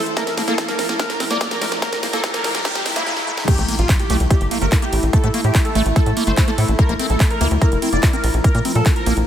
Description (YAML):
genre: psychedelic trance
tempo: 145 BPM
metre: 4/4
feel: straight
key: unclear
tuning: A4 = 438 Hz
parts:
  - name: pulsing gated texture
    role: sustained chords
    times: 0.0-9.3 s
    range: A3 to E4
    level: -27 LUFS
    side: left 2 dB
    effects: chorus, built-in reverb, sidechain pumping
  - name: riser, noise sweep and impact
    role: sound effects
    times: 0.0-5.1 s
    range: none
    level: -29 LUFS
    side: equal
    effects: none
  - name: deep dark ambient pad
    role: texture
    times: 0.0-9.3 s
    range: F3 to Bb5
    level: -29 LUFS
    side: right 2 dB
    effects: chorus, built-in reverb, sidechain pumping
  - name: techno drum kit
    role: drums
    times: 0.1-9.2 s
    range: crash cymbal, handclaps, hi-hat, ride cymbal, snare drum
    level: -25 LUFS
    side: equal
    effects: high-pass filter on snare, high-pass filter on hats, high-pass filter on cymbals
  - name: wide unison lead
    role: melody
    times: 0.2-9.1 s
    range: E4 to D5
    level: -24 LUFS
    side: equal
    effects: phaser, sidechain pumping, tape echo
  - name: liquid acid bass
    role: riff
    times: 0.2-9.1 s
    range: G3 to F4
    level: -25 LUFS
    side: moving between left 5 dB and right 4 dB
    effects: phaser, auto-pan, sidechain pumping, tape echo
  - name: electronic kick drum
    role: drums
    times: 0.2-8.9 s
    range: none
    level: -16 LUFS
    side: equal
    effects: high-pass filter on kick
  - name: tight sequencer bass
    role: bass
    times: 3.6-9.2 s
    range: F1 to Bb2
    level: -18 LUFS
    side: equal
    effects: none
room: moderate lush hall reverb, RT60 2.2 s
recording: dreamy mix soaked in reverb, high-pass filter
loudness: -15 LUFS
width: side -10 dB against mid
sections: 0.0-3.5 A section; 3.5-9.3 B section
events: build-up 0.0-3.5; drum fill 0.0-3.1, 3.1-3.5; riser 0.0-3.5; noise sweep 1.8-3.5; drop 3.5-9.3; impact 3.5-5.1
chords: 0.2 Bb5; 3.5 A5; 6.8 Bb5